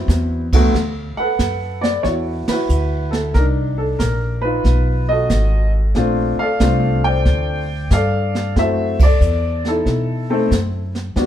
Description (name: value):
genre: jazz piano trio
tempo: 92 BPM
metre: 4/4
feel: swing 67% on 8ths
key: unclear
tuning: A4 = 440 Hz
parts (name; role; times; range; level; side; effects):
- warm upright piano; melody; 0.0-11.3 s; D2 to G5; -19 LUFS; left 1 dB; plate reverb
- upright bass; bass; 0.0-11.3 s; G#1 to B2; -19 LUFS; equal; none
- jazz brush drum kit; drums; 0.1-11.3 s; brushed snare drum, crash cymbal, hi-hat, kick drum, ride cymbal, snare drum; -18 LUFS; right 2 dB; none
room: moderate studio reverb, RT60 0.8 s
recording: heard from further back in the room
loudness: -15 LUFS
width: side -11 dB against mid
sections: 0.7-11.3 A section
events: band accent 2.4-2.7, 8.9-9.2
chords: 0.0 D13; 0.7 D69; 3.3 Cm9; 4.7 B7#11; 6.0 Bbmaj9; 8.6 F#m7b5; 9.9 B7